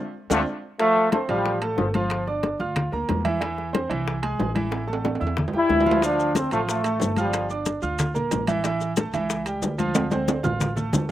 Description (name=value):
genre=latin, salsa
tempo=184 BPM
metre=4/4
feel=straight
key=D minor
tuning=A4 = 444 Hz
part: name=mellow trombone section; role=melody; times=0.3-2.2, 5.6-7.5 s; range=D3 to E4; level=-22 LUFS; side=left 1 dB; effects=slapback echo
part: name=bright concert grand piano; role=accompaniment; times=0.3-11.1 s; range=E3 to F6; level=-27 LUFS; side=right 3 dB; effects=slapback echo
part: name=upright bass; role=bass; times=0.3-11.1 s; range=G1 to E2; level=-30 LUFS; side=equal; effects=none
part: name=bongos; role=percussion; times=0.3-11.1 s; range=none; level=-32 LUFS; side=left 6 dB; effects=slapback echo
part: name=congas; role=percussion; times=0.3-11.0 s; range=none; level=-28 LUFS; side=left 2 dB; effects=none
part: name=maracas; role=percussion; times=0.3-0.4, 6.0-11.1 s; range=none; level=-35 LUFS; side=left 6 dB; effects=none
part: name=timbales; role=percussion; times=0.3-11.1 s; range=none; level=-30 LUFS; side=right 4 dB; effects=none
room=little or no reverb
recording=recorded outdoors, with no room sound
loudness=-21 LUFS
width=side -13 dB against mid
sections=0.8-11.1 A section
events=drum fill 0.0-0.8, 4.7-6.0, 9.9-11.1; band accent 0.0-0.8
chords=0.0 Dm7; 0.8 G9sus4; 2.1 Gm7; 3.4 Eaug; 4.7 A5; 6.0 Dm7; 7.3 Gm7; 8.6 A7; 9.9 Dm7